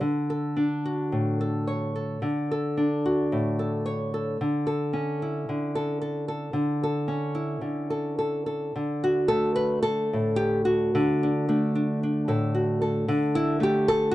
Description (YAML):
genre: folk, solo fingerstyle acoustic guitar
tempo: 111 BPM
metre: 4/4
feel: rubato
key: D major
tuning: A4 = 440 Hz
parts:
  - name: nylon-string guitar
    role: solo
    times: 0.0-14.1 s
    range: A2 to C#5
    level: -24 LUFS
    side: equal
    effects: none
room: light reverb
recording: dark, warm production, nothing above 10.8 kHz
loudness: -24 LUFS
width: side -16 dB against mid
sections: 0.0-8.7 A section; 8.7-14.1 B section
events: none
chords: 0.0 D; 4.4 A/D; 8.7 D; 13.1 A5/D